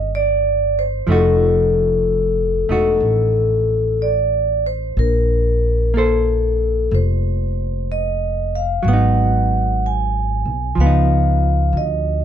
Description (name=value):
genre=jazz ballad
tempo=62 BPM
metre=4/4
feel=swing 68% on 8ths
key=Bb major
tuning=A4 = 440 Hz
part: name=vibraphone with medium mallets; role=melody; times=0.0-12.2 s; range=A4 to Ab5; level=-19 LUFS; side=left 1 dB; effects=none
part: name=hollow-body jazz guitar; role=accompaniment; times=0.0-12.2 s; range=Eb3 to C5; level=-24 LUFS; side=right 4 dB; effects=none
part: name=upright bass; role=bass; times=0.0-12.2 s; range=E1 to D2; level=-18 LUFS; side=equal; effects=none
room=little or no reverb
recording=dark, warm production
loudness=-15 LUFS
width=side -9 dB against mid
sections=0.0-12.2 A section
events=none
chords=0.0 Cm7; 1.1 F7b9; 5.0 Bbsus2; 8.9 Abm7; 10.8 Db9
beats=0.12 | 1.08 2.05 3.02 4.00 | 4.97 5.95 6.92 7.89 | 8.86 9.82 10.78 11.74